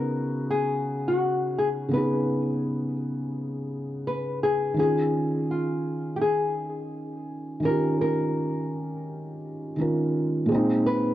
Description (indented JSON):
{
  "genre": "hip hop",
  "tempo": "84 BPM",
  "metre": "4/4",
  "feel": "swing 60% on 16ths",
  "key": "unclear",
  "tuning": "A4 = 440 Hz",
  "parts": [
    { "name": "nylon-string guitar", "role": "melody", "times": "0.0-11.1 s", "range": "F4 to Cb5", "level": "-27 LUFS", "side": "left 2 dB", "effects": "low-pass filter" },
    { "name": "felt-muted upright piano", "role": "accompaniment", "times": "0.0-11.1 s", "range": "Bb2 to Bb4", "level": "-26 LUFS", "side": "right 1 dB", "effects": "low-pass filter" }
  ],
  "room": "moderate spring reverb, RT60 2.7 s",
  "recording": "dark, warm production",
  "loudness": "-24 LUFS",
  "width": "side -13 dB against mid",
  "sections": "0.0-11.1 A section",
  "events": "none",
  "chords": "0.0 Db9sus4; 4.8 Eb9sus4; 10.5 Bb9sus4"
}